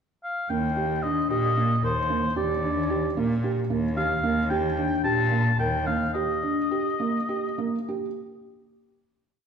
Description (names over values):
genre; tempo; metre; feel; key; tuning
contemporary instrumental, chamber music in an uneven meter; 223 BPM (eighths); 7/8; uneven beats; Eb lydian; A4 = 439 Hz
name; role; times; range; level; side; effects
mellow oboe; melody; 0.2-7.8 s; C5 to A5; -27 LUFS; left 2 dB; none
felt-muted upright piano; arpeggios; 0.5-8.0 s; Bb3 to Bb4; -26 LUFS; right 3 dB; none
rich cello; bass; 0.5-6.1 s; Eb2 to Bb2; -28 LUFS; left 1 dB; none
room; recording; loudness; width
wet recital hall reverb, RT60 1.4 s; recorded in a church or concert hall; -23 LUFS; side -6 dB against mid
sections
0.0-0.5 pickup bar; 0.5-8.2 A section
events
slowing down 4.2-8.2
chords
0.0 N.C.; 0.5 Eb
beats
0.23 | 0.50 0.77 1.03 1.30 1.57 1.84 2.10 | 2.37 2.64 2.91 3.17 3.44 3.71 3.98 | 4.24 4.51 4.78 5.05 5.32 5.59 5.87 | 6.15 6.43 6.71 7.00 7.29 7.58 7.88